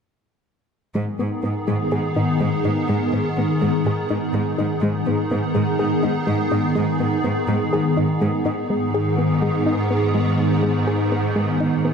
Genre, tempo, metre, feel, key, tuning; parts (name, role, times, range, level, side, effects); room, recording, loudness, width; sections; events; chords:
cinematic; 124 BPM; 4/4; straight; G# minor; A4 = 439 Hz
hollow soft pad; sustained chords; 1.0-11.9 s; D#3 to G#4; -21 LUFS; equal; ensemble chorus
soft round pluck; arpeggios; 1.0-11.9 s; G#3 to G#4; -26 LUFS; left 2 dB; chorus, ping-pong delay
clear symphonic cello section; bass; 1.0-11.9 s; G#2; -24 LUFS; right 1 dB
moderate scoring stage reverb, RT60 1.6 s; -18 LUFS; side -6 dB against mid
1.0-8.7 A section; 8.7-11.9 B section
build-up 8.7-11.9
1.0 G#m